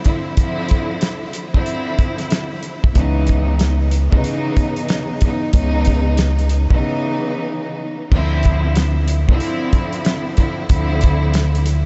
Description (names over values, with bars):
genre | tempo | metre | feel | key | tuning
hip hop, boom-bap hip-hop | 93 BPM | 4/4 | swing 63% on 16ths | unclear | A4 = 439 Hz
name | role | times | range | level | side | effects
warm studio string section | accompaniment | 0.0-11.6 s | C#3 to E4 | -24 LUFS | equal | cassette tape, high-pass filter, low-pass filter
warm soul drum kit | drums | 0.0-11.8 s | crash cymbal, hi-hat, kick drum, snare drum | -21 LUFS | equal | none
deep dub fingered electric bass | bass | 3.0-11.8 s | B1 to D2 | -19 LUFS | equal | none
room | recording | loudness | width
moderate huge ambient reverb, RT60 7.5 s | dreamy mix soaked in reverb, nothing above 7.9 kHz | -18 LUFS | mono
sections
0.0-8.1 A section; 8.1-11.9 B section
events
break 6.8-8.1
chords
0.0 Dm9; 3.0 C#m9; 8.1 Dm9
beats
| 0.38 1.02 1.67 2.31 | 2.96 3.60 4.25 4.89 | 5.54 6.18 6.83 7.47 | 8.12 8.76 9.41 10.05 | 10.70 11.34